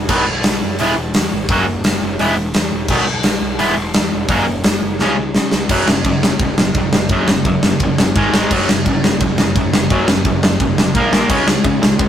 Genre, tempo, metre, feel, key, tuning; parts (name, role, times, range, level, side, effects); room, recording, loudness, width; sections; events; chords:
punk rock; 171 BPM; 4/4; straight; F# mixolydian, F# major from 5.7 s; A4 = 440 Hz
fuzz picked electric bass; bass; 0.0-12.1 s; E1 to C#3; -24 LUFS; equal; overdrive
distorted electric guitar; riff; 0.1-12.1 s; F#2 to B4; -16 LUFS; equal; distortion
big rock drum kit; drums; 0.1-12.1 s; crash cymbal, hi-hat, kick drum, ride cymbal, snare drum; -16 LUFS; equal
light reverb; rough rehearsal-room recording, tube saturation; -13 LUFS; side -10 dB against mid
0.0-5.7 A section; 5.7-12.1 B section
half time 0.0-5.7; drum fill 5.0-5.7
0.1 B; 0.8 E; 1.5 F#; 2.2 E; 2.9 B; 3.6 E; 4.3 F#; 5.0 C#; 5.7 F#5; 8.2 G#5; 8.5 F#5; 11.0 A#5; 11.3 C#5